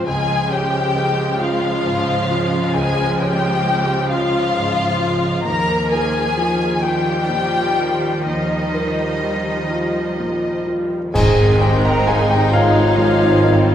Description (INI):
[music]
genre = cinematic, emotional film score for orchestra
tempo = 41-46 BPM (dotted quarters)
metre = 6/8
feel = rubato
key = Ab major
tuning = A4 = 439 Hz
[part]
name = warm chamber violin section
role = melody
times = 0.0-13.7 s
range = Eb5 to Bb5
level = -22 LUFS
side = left 3 dB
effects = none
[part]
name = warm symphonic violin section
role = second line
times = 0.0-13.7 s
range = C4 to Bb4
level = -24 LUFS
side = left 2 dB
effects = none
[part]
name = clear grand piano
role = accompaniment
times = 0.0-13.7 s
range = Db2 to Bb5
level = -21 LUFS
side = equal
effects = none
[part]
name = rich symphonic viola section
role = accompaniment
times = 0.0-13.7 s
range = Eb3 to Bb3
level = -24 LUFS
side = right 1 dB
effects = none
[part]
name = rich symphonic cello section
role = bass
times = 0.0-13.7 s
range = Ab2 to Eb3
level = -24 LUFS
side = right 2 dB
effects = none
[part]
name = cymbal swell, clash cymbals and concert bass drum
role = percussion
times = 8.3-12.9 s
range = none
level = -26 LUFS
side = equal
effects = none
[part]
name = mellow clarinet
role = second line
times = 11.1-13.7 s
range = F4 to Bb4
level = -19 LUFS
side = equal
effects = none
[part]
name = mellow French horn section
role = sustained chords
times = 11.1-13.7 s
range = C3 to Eb4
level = -24 LUFS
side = right 1 dB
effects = none
[part]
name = rich symphonic double bass section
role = bass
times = 11.1-13.7 s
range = Ab1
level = -24 LUFS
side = right 2 dB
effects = none
[part]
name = timpani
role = percussion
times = 11.1-12.5 s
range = Ab2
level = -22 LUFS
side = right 1 dB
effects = none
[part]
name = hollow concert flute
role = second line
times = 11.2-13.7 s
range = Db5 to G5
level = -23 LUFS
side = left 2 dB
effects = none
[sound]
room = wet recital hall reverb, RT60 1.5 s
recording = heard from further back in the room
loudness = -15 LUFS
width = side -10 dB against mid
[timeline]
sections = 0.0-11.1 A section; 11.1-13.7 A section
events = band accent 11.1-12.1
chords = 0.1 Db; 5.5 Ebadd9; 11.1 Ab